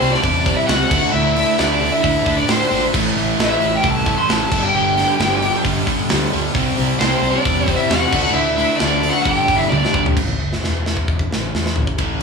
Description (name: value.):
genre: hard rock.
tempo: 133 BPM.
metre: 4/4.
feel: straight.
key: A minor.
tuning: A4 = 437 Hz.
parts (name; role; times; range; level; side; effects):
high-gain lead guitar; melody; 0.0-10.0 s; C5 to C6; -19 LUFS; left 2 dB; distortion.
octave-fuzz lead guitar; second line; 0.0-10.0 s; C4 to C5; -26 LUFS; right 4 dB; distortion.
bright tonewheel organ; sustained chords; 0.0-10.2 s; G3 to E5; -31 LUFS; equal; none.
crunchy overdriven guitar; riff; 0.0-10.1 s; G2 to D4; -28 LUFS; right 2 dB; none.
overdriven semi-hollow guitar; riff; 0.0-12.2 s; G2 to D4; -24 LUFS; left 8 dB; none.
overdriven semi-hollow guitar; riff; 0.0-12.2 s; G2 to D4; -23 LUFS; right 7 dB; tremolo.
fuzz fingered electric bass; bass; 0.0-12.2 s; E1 to A2; -24 LUFS; equal; overdrive.
tight metal drum kit; drums; 0.0-12.2 s; crash cymbal, hi-hat, kick drum, ride cymbal, snare drum, toms; -20 LUFS; equal; none.
room: moderate large studio reverb, RT60 0.9 s.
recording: band playing live in one room.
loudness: -15 LUFS.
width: side -4 dB against mid.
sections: 0.0-10.2 A section; 10.2-12.0 B section.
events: drum fill 9.7-10.2, 10.2-12.0.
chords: 0.0 C; 0.9 D5; 2.9 Am; 4.5 G5; 6.5 C; 8.1 D5; 9.3 G5; 10.2 A5.